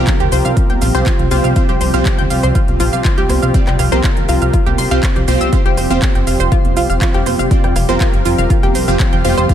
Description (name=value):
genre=progressive house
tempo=121 BPM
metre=4/4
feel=straight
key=unclear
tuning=A4 = 438 Hz
part: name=warm analog pad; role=sustained chords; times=0.0-9.5 s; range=C3 to F5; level=-22 LUFS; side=equal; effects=chorus, vintage 12-bit sampler grit, sidechain pumping
part: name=supersaw stab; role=stabs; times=0.0-9.5 s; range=C4 to D5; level=-19 LUFS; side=right 2 dB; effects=sidechain pumping, ping-pong delay
part: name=plucky analog bass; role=bass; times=0.0-9.5 s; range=F1 to D2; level=-17 LUFS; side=equal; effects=sidechain pumping
part: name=analog pluck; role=arpeggios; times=0.1-9.5 s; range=F4 to E6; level=-20 LUFS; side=equal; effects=chorus, sidechain pumping, ping-pong delay
part: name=electronic kick drum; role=drums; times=0.1-9.5 s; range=none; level=-15 LUFS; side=equal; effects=overdrive
part: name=house drum kit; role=drums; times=0.1-9.5 s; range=handclaps, hi-hat, rim click, shaker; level=-24 LUFS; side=right 2 dB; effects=none
part: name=congas and bongos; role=percussion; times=0.7-9.4 s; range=none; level=-28 LUFS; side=right 4 dB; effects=none
part: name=twinkling granular texture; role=texture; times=6.4-9.5 s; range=F3 to F5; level=-27 LUFS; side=left 2 dB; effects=built-in reverb, sidechain pumping
room=little or no reverb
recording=faint mains hum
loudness=-11 LUFS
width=side -10 dB against mid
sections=0.0-9.5 A section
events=none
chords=0.0 Csus4; 5.5 Fsus2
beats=0.07 0.57 1.06 | 1.56 2.06 2.55 3.05 | 3.54 4.04 4.54 5.03 | 5.53 6.02 6.52 7.01 | 7.51 8.01 8.50 9.00 | 9.49